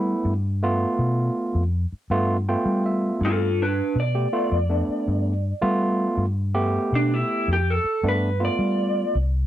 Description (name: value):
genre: straight-eighth soul blues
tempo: 81 BPM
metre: 4/4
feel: straight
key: G mixolydian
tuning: A4 = 441 Hz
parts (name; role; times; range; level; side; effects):
- electric guitar through a small old amp; melody; 0.0-9.1 s; D4 to D5; -25 LUFS; equal; wide subtle chorus
- overdriven tine electric piano; accompaniment; 0.0-9.1 s; A3 to G5; -24 LUFS; right 1 dB; none
- vintage muted fingered electric bass; bass; 0.0-9.5 s; C2 to G3; -23 LUFS; left 1 dB; none
room: little or no reverb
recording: dry, close 1970s-style studio recording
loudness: -20 LUFS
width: side -12 dB against mid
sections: 0.0-9.5 A section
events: clean electric guitar solo 0.0-9.5; tine electric piano fill 2.1-3.2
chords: 0.0 G7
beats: | 0.26 1.00 1.74 2.48 | 3.22 3.96 4.70 5.44 | 6.18 6.92 7.67 8.41 | 9.15